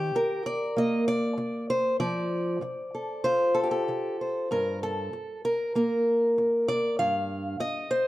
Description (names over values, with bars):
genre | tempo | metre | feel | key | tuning
folk, solo fingerstyle acoustic guitar | 97 BPM | 4/4 | straight | unclear | A4 = 438 Hz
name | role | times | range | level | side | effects
fingerpicked acoustic archtop guitar | solo | 0.0-8.1 s | G2 to F5 | -25 LUFS | equal | none
room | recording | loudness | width
moderate large studio reverb, RT60 1.3 s | dark, warm production | -25 LUFS | side -16 dB against mid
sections
0.0-8.1 A section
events
none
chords
0.0 Eb; 2.0 F; 4.5 Gm; 7.0 Cm/G